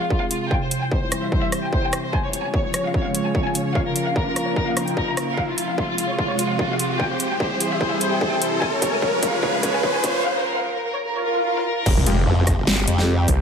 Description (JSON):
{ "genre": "heavy wobble dubstep", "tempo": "148 BPM", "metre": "4/4", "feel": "swing 54% on 16ths, half-time", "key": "F harmonic minor", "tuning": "A4 = 440 Hz", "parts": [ { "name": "rich studio violin section", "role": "melody", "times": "0.0-11.8 s", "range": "F4 to Bb5", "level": "-25 LUFS", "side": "left 1 dB", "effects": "ping-pong delay" }, { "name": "lush unison pad", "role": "sustained chords", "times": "0.0-13.4 s", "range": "C3 to G4", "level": "-28 LUFS", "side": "right 1 dB", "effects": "chorus, sidechain pumping" }, { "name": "riser, swell and impact", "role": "sound effects", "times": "2.0-13.4 s", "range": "none", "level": "-26 LUFS", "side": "right 1 dB", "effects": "none" }, { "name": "warbly tape-like pad", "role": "texture", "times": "0.0-13.4 s", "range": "Ab3 to F5", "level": "-31 LUFS", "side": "left 2 dB", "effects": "chorus, built-in reverb, sidechain pumping" }, { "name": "electronic kick drum", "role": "drums", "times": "0.1-13.4 s", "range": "none", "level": "-24 LUFS", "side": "equal", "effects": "distortion" }, { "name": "dubstep drum kit", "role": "drums", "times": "0.3-13.4 s", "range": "crash cymbal, hi-hat, rim click, snare drum", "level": "-24 LUFS", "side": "equal", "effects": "high-pass filter on hats, high-pass filter on snare, high-pass filter on cymbals" }, { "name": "formant-sweep wobble bass", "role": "bass", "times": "11.9-13.3 s", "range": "F1 to F2", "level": "-19 LUFS", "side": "equal", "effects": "chorus, overdrive" }, { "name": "snarling distorted saw bass", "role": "bass", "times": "12.0-13.4 s", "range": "F1 to C2", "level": "-19 LUFS", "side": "equal", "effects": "distortion, overdrive" }, { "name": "orchestra-hit-like synth stab", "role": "stabs", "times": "12.1-13.4 s", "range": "Ab3 to G4", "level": "-28 LUFS", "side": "left 3 dB", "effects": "built-in reverb, ping-pong delay" } ], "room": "moderate lush hall reverb, RT60 2.0 s", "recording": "high-pass filter", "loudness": "-19 LUFS", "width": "side -6 dB against mid", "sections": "0.0-11.9 A section; 11.9-13.4 B section", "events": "build-up 0.0-11.9; filter sweep on analog synth pad 0.0-11.9; riser 2.0-10.2; drum fill 5.4-10.2; break 10.2-11.9; swell 11.2-11.9; drop 11.9-13.4; impact 11.9-13.4", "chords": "0.0 Fm; 0.5 C; 2.1 Db; 3.8 Bbm; 5.4 Fm; 7.0 C; 8.6 Db; 10.2 N.C.; 11.9 Fmadd9" }